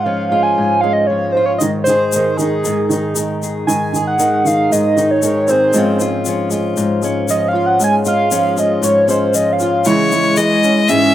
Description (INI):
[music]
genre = acoustic folk duo or small band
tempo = 116 BPM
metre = 4/4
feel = straight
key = unclear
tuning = A4 = 441 Hz
[part]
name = pure sine lead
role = second line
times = 0.0-11.1 s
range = Ab3 to Ab5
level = -15 LUFS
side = right 2 dB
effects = chorus
[part]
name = fingerpicked steel-string acoustic guitar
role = accompaniment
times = 0.0-11.1 s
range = Ab2 to Ab4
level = -18 LUFS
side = left 4 dB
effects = slapback echo
[part]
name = felt-muted upright piano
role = arpeggios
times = 0.0-11.1 s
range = Eb3 to F4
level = -21 LUFS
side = right 4 dB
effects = none
[part]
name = egg shaker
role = percussion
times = 1.6-11.0 s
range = none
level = -24 LUFS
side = left 7 dB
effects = none
[part]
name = clear fiddle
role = melody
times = 9.9-11.1 s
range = Db5 to Fb5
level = -14 LUFS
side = left 3 dB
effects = slapback echo
[sound]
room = light reverb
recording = recorded outdoors, with no room sound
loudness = -12 LUFS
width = side -12 dB against mid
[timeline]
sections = 0.0-9.9 A section; 9.9-11.1 B section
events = soft synth lead solo 0.0-9.9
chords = 0.0 Db/Ab; 1.6 Ab5; 5.7 Dbmaj7/Ab; 9.9 Dbmadd9